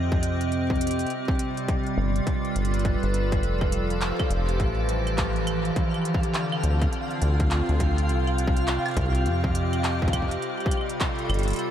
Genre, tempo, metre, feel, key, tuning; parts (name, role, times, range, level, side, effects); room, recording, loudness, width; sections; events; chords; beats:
IDM; 103 BPM; 4/4; swing 62% on 16ths; F lydian; A4 = 437 Hz
icy glass pad; sustained chords; 0.0-11.7 s; C3 to F5; -27 LUFS; right 1 dB; chorus, built-in reverb
deep acid bass; bass; 0.0-11.5 s; F1 to F2; -25 LUFS; equal
electronic kick drum; drums; 0.1-11.2 s; -27 LUFS; equal; distortion
industrial drum kit; drums; 0.1-11.7 s; claves, handclaps, hi-hat; -34 LUFS; right 1 dB; ping-pong delay
twinkling granular texture; texture; 3.7-11.7 s; F5; -36 LUFS; equal; built-in reverb
moderate huge ambient reverb, RT60 8.0 s; dreamy mix soaked in reverb; -22 LUFS; side -10 dB against mid
0.0-11.7 A section
0.0 Cm; 1.1 G9; 3.4 Fmaj9; 5.8 Dm7; 8.1 Cm; 10.4 G9
0.52 | 1.10 1.69 2.27 2.85 | 3.43 4.01 4.60 5.18 | 5.76 6.34 6.93 7.51 | 8.09 8.68 9.26 9.84 | 10.42 11.01 11.59